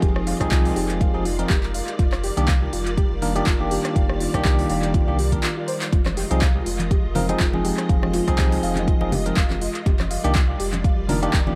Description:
deep house; 122 BPM; 4/4; swing 55% on 16ths; F dorian; A4 = 442 Hz
soft string machine; sustained chords; 0.0-11.6 s; Eb3 to Eb5; -35 LUFS; equal; ensemble chorus, sidechain pumping
soft round pluck; arpeggios; 0.0-11.4 s; F4 to F5; -33 LUFS; equal; chorus, sidechain pumping, analog delay
bell-like tine electric piano; stabs; 0.0-11.6 s; Eb3 to Bb4; -27 LUFS; equal; sidechain pumping, analog delay
warm sub bass; bass; 0.0-11.6 s; F1 to C2; -28 LUFS; equal; sidechain pumping
deep house drum kit; drums; 0.0-11.4 s; handclaps, hi-hat, rim click; -31 LUFS; equal; studio reverb, analog delay
electronic kick drum; drums; 0.0-11.4 s; -23 LUFS; equal; studio reverb
ethereal airy pad; texture; 0.0-11.6 s; Eb4 to Eb5; -36 LUFS; equal; ensemble chorus, built-in reverb, tremolo, sidechain pumping
congas; percussion; 5.9-11.6 s; -33 LUFS; equal; analog delay
light reverb; echo-heavy mix, vinyl crackle; -21 LUFS; mono
0.0-11.6 A section
break 5.4-5.9; drum fill 5.4-5.9
0.0 Fm7; 2.0 Ebmaj7/F; 5.9 Fm7; 9.9 Ebmaj7/F
| 0.02 0.52 1.01 1.50 | 1.99 2.48 2.98 3.47 | 3.96 4.45 4.94 5.43 | 5.92 6.42 6.91 7.40 | 7.89 8.38 8.88 9.37 | 9.86 10.35 10.84 11.34

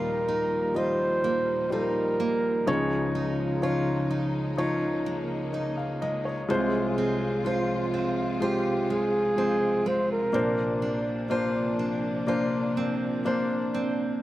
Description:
pop ballad; 62 BPM; 4/4; straight; A4 = 440 Hz
mellow flugelhorn; melody; 0.0-11.0 s; F4 to C5; -27 LUFS; right 1 dB; slapback echo
warm concert grand piano; accompaniment; 0.0-14.2 s; Bb1 to F5; -28 LUFS; left 2 dB
warm studio string section; sustained chords; 0.0-14.2 s; Bb2 to F4; -35 LUFS; left 1 dB
picked steel-string acoustic guitar; arpeggios; 0.0-14.2 s; Bb2 to F4; -32 LUFS; right 6 dB
little or no reverb; recorded outdoors, with no room sound; -24 LUFS; side -15 dB against mid
0.0-14.2 A section
0.0 Ebadd9; 2.7 Dbadd9; 6.5 Fm/C; 10.3 Bbadd9
0.77 1.72 | 2.68 3.63 4.58 5.54 | 6.49 7.45 8.41 9.38 | 10.34 11.30 12.28 13.25

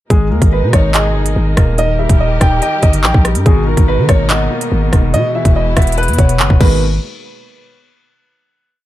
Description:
hip hop, drill; 143 BPM; 4/4; half-time; G# harmonic minor; A4 = 440 Hz
dark baby grand piano; melody; 0.1-6.8 s; G#4 to G5; -19 LUFS; right 2 dB
warm baby grand piano; accompaniment; 0.1-6.8 s; B2 to D#5; -20 LUFS; left 4 dB
dark symphonic string section; sustained chords; 0.1-6.8 s; B2 to A#4; -25 LUFS; equal
growling 808-style bass; bass; 0.1-7.0 s; D#1 to D#3; -15 LUFS; equal
drill drum kit; drums; 0.1-6.7 s; crash cymbal, handclaps, hi-hat, kick drum, rim click; -12 LUFS; equal
studio ambience; dark, warm production; -10 LUFS; side -14 dB against mid
0.1-6.8 hook; 6.8-8.5 final hit
0.1 G#madd9; 1.8 D#; 3.5 G#madd9; 5.1 E; 6.6 G#madd9; 6.8 N.C.
| 0.10 0.52 0.94 1.36 | 1.78 2.20 2.62 3.04 | 3.46 3.88 4.30 4.72 | 5.14 5.56 5.98 6.40 | 6.82

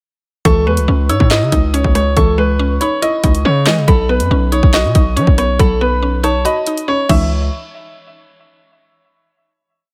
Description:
hip hop, drill; 140 BPM; 4/4; half-time; C# minor; A4 = 442 Hz
warm concert grand piano; melody; 0.5-7.3 s; A4 to E5; -20 LUFS; equal; delay
soft synth bell; second line; 0.5-7.3 s; A5 to E6; -27 LUFS; equal; chorus, phaser, delay
mallet-like synth pluck; accompaniment; 0.5-7.3 s; E3 to F#4; -22 LUFS; equal; chorus
distorted 808-style bass; bass; 0.5-7.5 s; B1 to F#3; -18 LUFS; equal; distortion
drill drum kit; drums; 0.5-7.2 s; crash cymbal, handclaps, hi-hat, kick drum, rim click, snare drum; -17 LUFS; equal
digital ambience; -14 LUFS; mono
0.5-7.3 hook; 7.3-9.0 final hit
kick muted 6.5-7.3
0.5 C#madd9; 3.9 Badd9; 7.1 C#madd9; 7.3 N.C.
| 0.45 0.88 1.31 1.74 | 2.17 2.59 3.02 3.45 | 3.88 4.31 4.74 5.17 | 5.59 6.02 6.45 6.88 | 7.31

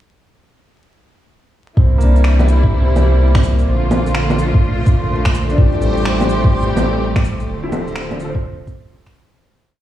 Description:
future garage; 126 BPM; 4/4; swing 64% on 16ths; D minor; A4 = 441 Hz
clear upright piano; accompaniment; 1.8-9.5 s; Bb3 to C5; -25 LUFS; left 1 dB; sidechain pumping, tape echo
rich studio string section; sustained chords; 1.8-9.4 s; C3 to G4; -20 LUFS; right 1 dB; sidechain pumping
warm sub bass; bass; 1.8-9.4 s; D1 to C2; -16 LUFS; equal; sidechain pumping
electronic kick drum; drums; 1.8-9.1 s; -13 LUFS; equal; overdrive
backwards swelling texture; texture; 3.4-9.4 s; C5; -27 LUFS; equal; built-in reverb
electronic shaker, finger snaps and bongos; drums; 2.0-9.4 s; -21 LUFS; right 1 dB; overdrive
light reverb; played on a big sound system in a bare room, large studio reverb, vinyl crackle, small room reverb; -13 LUFS; side -12 dB against mid
1.8-9.4 groove
fade-out 6.8-9.4
1.8 C7; 3.7 Bbmaj7; 5.6 Am7; 7.5 Dm7
| 1.77 2.25 2.72 3.20 | 3.67 4.15 4.63 5.10 | 5.58 6.05 6.53 7.01 | 7.48 7.96 8.44 8.91

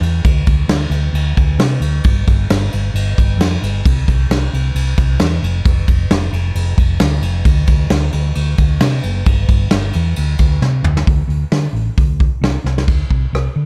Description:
folk rock and heartland rock; 133 BPM; 4/4; straight; D minor; A4 = 440 Hz
hollow-body short-scale fingered electric bass; bass; 0.0-13.7 s; F1 to D3; -18 LUFS; equal
soft brush drum kit; drums; 0.0-13.4 s; crash cymbal, hi-hat, kick drum, rim click, snare drum, toms; -18 LUFS; equal
little or no reverb; dark, warm production; -15 LUFS; mono
0.0-11.1 A section; 11.1-12.9 B section
drum fill 10.6-11.1, 12.7
| 0.24 0.70 1.15 1.60 | 2.05 2.50 2.95 3.40 | 3.85 4.30 4.75 5.20 | 5.65 6.10 6.55 7.01 | 7.46 7.91 8.36 8.81 | 9.26 9.71 10.16 10.62 | 11.07 11.52 11.97 12.43 | 12.88 13.33

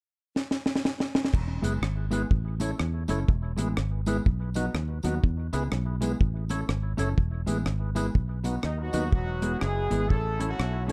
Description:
ska; 123 BPM; 4/4; swing 61% on 8ths; E major; A4 = 438 Hz
deep reggae drum kit; drums; 0.4-10.9 s; crash cymbal, hi-hat, kick drum, rim click, snare drum; -29 LUFS; equal
fingered electric bass; bass; 1.3-10.9 s; E1 to E2; -31 LUFS; equal
mellow electric guitar; accompaniment; 1.6-10.9 s; F#3 to A4; -34 LUFS; equal
tonewheel organ; stabs; 1.6-10.9 s; D#4 to C#5; -39 LUFS; equal; overdrive, slow rotary speaker, analog delay
tambourine; percussion; 1.6-9.0 s; -51 LUFS; equal
warm horn section; melody; 8.6-10.9 s; D#3 to A4; -34 LUFS; equal; analog delay
light reverb; dark, warm production; -28 LUFS; mono
0.0-1.3 A section; 1.3-9.1 B section; 9.1-10.9 C section
drum fill 0.4-1.3
0.0 N.C.; 1.3 E; 2.3 A; 3.3 E; 4.3 B; 5.2 E; 6.2 A; 7.2 E; 8.2 B; 9.1 E; 10.1 A
0.36 0.84 | 1.33 1.82 2.31 2.79 | 3.28 3.77 4.25 4.74 | 5.23 5.72 6.20 6.69 | 7.18 7.67 8.15 8.64 | 9.13 9.62 10.11 10.60

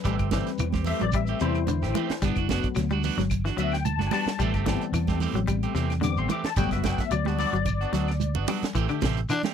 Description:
afrobeat; 110 BPM; 4/4; swing 53% on 16ths; A dorian; A4 = 441 Hz
barky tine electric piano; accompaniment; 0.0-8.4 s; F#3 to D6; -30 LUFS; left 12 dB; overdrive, ensemble chorus
electric guitar at the edge of break-up; arpeggios; 0.0-9.5 s; C3 to G3; -31 LUFS; left 8 dB
electric guitar at the edge of break-up; stabs; 0.0-9.5 s; E3 to G4; -32 LUFS; right 12 dB; phaser
fingered electric bass; bass; 0.0-9.2 s; F#1 to E2; -28 LUFS; right 1 dB
congas; percussion; 0.0-9.5 s; -32 LUFS; right 16 dB
shekere; percussion; 0.0-9.5 s; -36 LUFS; right 4 dB
tight funk drum kit; drums; 0.1-9.5 s; hi-hat, kick drum, snare drum; -31 LUFS; right 2 dB
claves; percussion; 0.2-9.4 s; -43 LUFS; left 14 dB
growling tenor saxophone; melody; 9.3-9.4 s; D4; -26 LUFS; left 2 dB
growling alto saxophone; second line; 9.3-9.4 s; D5; -36 LUFS; right 4 dB
little or no reverb; dry, close 1970s-style studio recording; -23 LUFS; side -8 dB against mid
0.0-8.7 A section
tine electric piano solo 0.0-8.7; drum fill 7.9-8.7
0.1 Am7; 2.2 Gmaj7; 4.4 Am7; 6.6 Gmaj7; 8.7 Am7
| 0.05 0.59 1.14 1.68 | 2.23 2.77 3.31 3.86 | 4.40 4.94 5.49 6.03 | 6.57 7.12 7.66 8.20 | 8.74 9.29

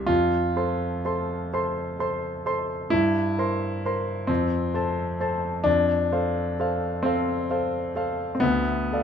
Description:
classical, romantic nocturne for solo piano; 36-46 BPM (dotted quarters); 12/8; rubato; A4 = 439 Hz
warm grand piano; solo; 0.0-9.0 s; C2 to C6; -23 LUFS; equal
moderate recital hall reverb, RT60 1.4 s; close, detailed microphones; -23 LUFS; side -8 dB against mid
0.0-9.0 A section
0.1 F; 2.9 C7/G; 4.3 F; 8.4 Bm7b5/D
| 0.09 1.52 2.92 4.29 | 5.66 7.04 8.42

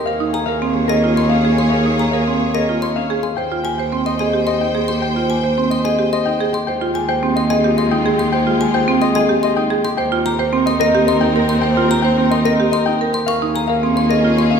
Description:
classical, minimalist pattern music; 109 BPM; 3/4; straight; A4 = 438 Hz
concert harp; melody; 0.0-14.6 s; G4 to G5; -21 LUFS; left 6 dB
xylophone with wooden mallets; arpeggios; 0.0-14.6 s; Eb5 to Db6; -24 LUFS; left 2 dB
clear symphonic string section; sustained chords; 0.1-14.6 s; Ab3 to G5; -24 LUFS; left 1 dB
buzzing marimba with medium hard mallets; arpeggios; 0.1-14.6 s; C4 to C5; -20 LUFS; right 4 dB
clear cello; bass; 0.1-14.6 s; Eb2; -19 LUFS; right 1 dB
wet recital hall reverb, RT60 1.8 s; recorded in a church or concert hall; -14 LUFS; side -6 dB against mid
0.0-14.6 A section
0.1 Eb9sus4; 3.4 Abmaj7/Eb; 10.0 Cm7/Eb; 13.3 Eb9sus4
| 0.07 0.62 1.17 | 1.73 2.27 2.83 | 3.38 3.93 4.48 | 5.03 5.58 6.13 | 6.68 7.23 7.78 | 8.33 8.88 9.43 | 9.98 10.53 11.08 | 11.63 12.18 12.73 | 13.29 13.84 14.38

